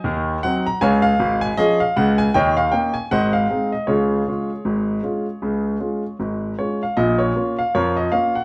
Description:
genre	ragtime piano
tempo	78 BPM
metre	2/4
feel	swing 57% on 16ths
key	Db major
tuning	A4 = 444 Hz
part	clear concert grand piano	solo	0.0-8.4 s	Ab1 to Bb5	-20 LUFS	equal	none
room	moderate studio reverb, RT60 0.9 s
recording	band playing live in one room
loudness	-20 LUFS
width	mono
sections	0.0-7.0 A section; 7.0-8.4 A section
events	none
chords	0.0 Ab7; 0.8 Db; 2.3 Eb5; 3.1 Ab; 3.9 Db; 7.0 Bbm

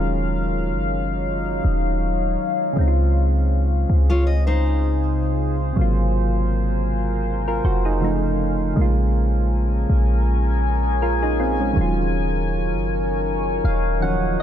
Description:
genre	R&B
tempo	80 BPM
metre	4/4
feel	swing 54% on 16ths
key	unclear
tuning	A4 = 438 Hz
part	soft electric-piano-like synth keys	accompaniment	0.0-14.4 s	C3 to Gb5	-25 LUFS	right 2 dB	chorus
part	deep dark ambient pad	sustained chords	0.0-14.4 s	Db3 to Ab5	-25 LUFS	left 2 dB	chorus, built-in reverb
part	clean 808-style bass	bass	0.0-14.4 s	Eb1 to Db2	-20 LUFS	equal	none
part	fingerpicked steel-string acoustic guitar	arpeggios	4.1-5.6 s	Eb4 to Eb5	-25 LUFS	left 3 dB	digital delay
room	digital ambience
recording	dark, warm production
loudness	-18 LUFS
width	side -10 dB against mid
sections	0.0-14.4 A section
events	synth keys fill 13.3-14.4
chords	0.0 Ebm9; 2.8 Dbmaj7; 5.8 Ab13; 8.0 Faug7; 8.8 Bbm7; 11.8 Ebm9

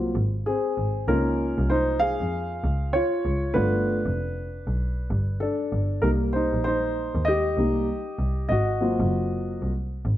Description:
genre	hip hop, jazz-hop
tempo	97 BPM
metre	4/4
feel	swing 60% on 16ths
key	unclear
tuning	A4 = 438 Hz
part	dark grand piano	accompaniment	0.0-9.7 s	Gb3 to F5	-24 LUFS	equal	none
part	clear double bass	bass	0.0-10.2 s	F1 to F2	-26 LUFS	equal	none
room	moderate echo chamber reverb, RT60 1.8 s, studio reverb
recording	dark, warm production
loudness	-22 LUFS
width	side -13 dB against mid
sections	0.0-6.0 A section; 6.0-10.2 A section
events	grand piano solo 0.0-6.0, 6.0-10.2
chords	0.0 Ab; 1.1 Db69; 3.6 G7; 6.0 Cm7; 8.5 Ab13

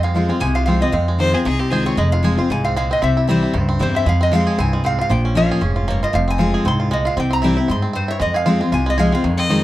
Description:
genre	bluegrass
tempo	231 BPM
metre	4/4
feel	swing 56% on 8ths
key	F minor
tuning	A4 = 437 Hz
part	bluegrass banjo	melody	0.0-9.6 s	Eb3 to Ab4	-25 LUFS	right 3 dB	none
part	lap resonator guitar	melody	0.0-9.6 s	C5 to C6	-22 LUFS	equal	none
part	picked steel-string acoustic guitar	accompaniment	0.0-9.6 s	F2 to F4	-19 LUFS	left 2 dB	none
part	upright bass	bass	0.0-9.6 s	F1 to G2	-20 LUFS	right 1 dB	none
part	clear fiddle	second line	1.2-2.0, 9.4-9.6 s	G4 to Eb5	-22 LUFS	left 2 dB	none
room	little or no reverb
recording	dry, close 1970s-style studio recording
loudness	-15 LUFS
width	side -15 dB against mid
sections	0.0-2.0 A section; 2.0-9.6 A section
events	none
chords	0.0 Fm; 0.9 Fm7; 2.0 Fm; 3.0 C; 4.1 Fm; 5.1 Bbm; 6.1 Fm; 7.2 C; 8.2 Fm

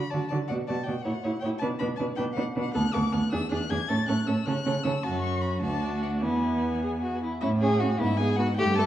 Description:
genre	quick classical-period movement for string quartet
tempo	105 BPM (dotted quarters)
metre	6/8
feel	rubato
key	A major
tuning	A4 = 436 Hz
part	clear violin	melody	0.0-8.9 s	E5 to A6	-35 LUFS	left 6 dB	none
part	rich violin	second line	0.1-8.9 s	E4 to D5	-32 LUFS	left 2 dB	none
part	rich viola	accompaniment	0.1-8.8 s	A3 to F#4	-31 LUFS	right 2 dB	none
part	clear cello	bass	0.1-8.9 s	D2 to D3	-28 LUFS	right 2 dB	none
room	wet recital hall reverb, RT60 1.5 s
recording	worn, warbling old tape, cassette tape, warbly pitch drift, small room ambience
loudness	-25 LUFS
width	side -12 dB against mid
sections	0.0-7.4 A section; 7.4-8.9 B section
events	none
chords	0.5 Bm; 1.1 F#7; 1.6 Bm; 2.8 Bm7/D; 3.3 E7; 3.9 A; 4.5 A/C#; 5.0 F#5; 5.6 D; 6.2 E; 7.4 A; 8.0 Eadd9/G#

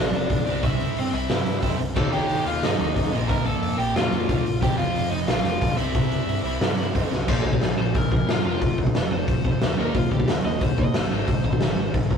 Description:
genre	punk rock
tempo	180 BPM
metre	4/4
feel	straight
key	unclear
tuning	A4 = 439 Hz
part	overdriven electric guitar	melody	0.0-11.9 s	C4 to Bb5	-28 LUFS	left 1 dB	none
part	crunchy overdriven guitar	riff	0.0-12.2 s	F2 to Eb4	-29 LUFS	left 5 dB	none
part	sludgy distorted guitar	riff	0.0-12.2 s	F2 to Eb4	-32 LUFS	right 7 dB	overdrive
part	overdriven picked electric bass	bass	0.0-12.2 s	F1 to Eb3	-31 LUFS	right 1 dB	none
part	raw garage drum kit	drums	0.1-12.2 s	crash cymbal, hi-hat, kick drum, snare drum	-23 LUFS	equal	none
room	light reverb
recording	rough rehearsal-room recording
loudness	-20 LUFS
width	side -7 dB against mid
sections	0.0-7.3 A section; 7.3-12.2 B section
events	half time 0.0-7.3; drum fill 7.1; overdriven electric guitar solo 7.3-12.2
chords	0.5 C; 2.0 Eb; 3.1 Bb5; 4.6 F5; 5.8 C; 7.3 Bb5; 8.4 F5; 9.8 Eb5; 11.1 Ab

